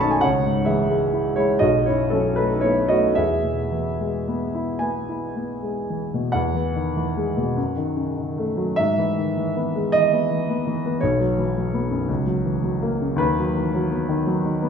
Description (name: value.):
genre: classical, romantic nocturne for solo piano.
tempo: 36-57 BPM (dotted quarters).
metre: 6/8.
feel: rubato.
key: E major.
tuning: A4 = 436 Hz.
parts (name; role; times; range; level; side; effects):
warm grand piano; solo; 0.0-14.7 s; B1 to D#6; -20 LUFS; equal; none.
room: wet recital hall reverb, RT60 1.7 s.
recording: minimal, uncompressed stereo recording.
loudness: -20 LUFS.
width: side -7 dB against mid.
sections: 0.0-6.4 A section; 6.4-14.7 B section.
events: none.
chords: 0.2 C#m; 1.6 B7; 3.2 E; 7.6 F#m6; 8.8 E/G#; 11.0 B5; 12.1 F#7/C#; 13.2 B/D#.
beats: | 0.24 1.62 | 3.17 4.82 | 6.35 7.57 | 8.78 9.93 | 11.02 12.09 | 13.21 14.27.